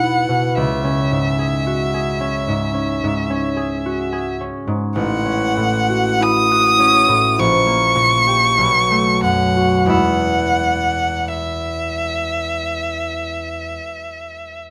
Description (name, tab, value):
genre	classical, romantic duo for violin and harp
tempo	43-56 BPM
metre	4/4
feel	rubato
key	E major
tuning	A4 = 440 Hz
part	rich violin	melody	0.0-14.6 s	E5 to D#6	-20 LUFS	equal	none
part	concert harp	accompaniment	0.0-13.8 s	A1 to E5	-21 LUFS	equal	none
room	moderate studio reverb, RT60 0.8 s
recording	none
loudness	-17 LUFS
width	mono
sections	0.0-14.7 A section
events	none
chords	0.0 E5; 0.6 C#m; 5.0 F#m/A; 7.4 A#m6; 8.6 B5; 9.9 E